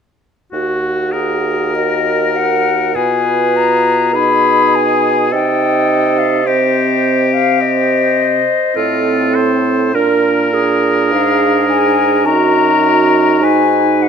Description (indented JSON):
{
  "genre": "classical, slow romantic movement for wind quintet",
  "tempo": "49-53 BPM",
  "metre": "4/4",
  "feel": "rubato",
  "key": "unclear",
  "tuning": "A4 = 438 Hz",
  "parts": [
    { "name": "bright oboe", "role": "second line", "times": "0.5-14.1 s", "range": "F4 to C5", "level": "-19 LUFS", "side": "left 4 dB", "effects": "none" },
    { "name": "bright clarinet", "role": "accompaniment", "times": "0.5-14.1 s", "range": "Gb4 to Eb5", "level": "-18 LUFS", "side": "right 8 dB", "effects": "none" },
    { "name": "warm French horn", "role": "accompaniment", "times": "0.5-14.1 s", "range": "C4 to Gb4", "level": "-19 LUFS", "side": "right 1 dB", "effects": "none" },
    { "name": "warm bassoon", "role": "bass", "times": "0.5-14.1 s", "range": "Eb2 to C3", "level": "-18 LUFS", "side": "right 3 dB", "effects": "none" },
    { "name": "silver concert flute", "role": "melody", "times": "1.7-14.1 s", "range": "Eb5 to Cb6", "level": "-15 LUFS", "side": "left 8 dB", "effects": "none" }
  ],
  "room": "moderate recital hall reverb, RT60 1.4 s",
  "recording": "close, detailed microphones",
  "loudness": "-11 LUFS",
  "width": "side -7 dB against mid",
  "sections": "0.5-14.1 A section",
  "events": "none",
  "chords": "0.5 Ebm; 3.0 Abm/Cb; 5.3 F7/C; 9.9 Bb; 12.3 Ebm/Gb"
}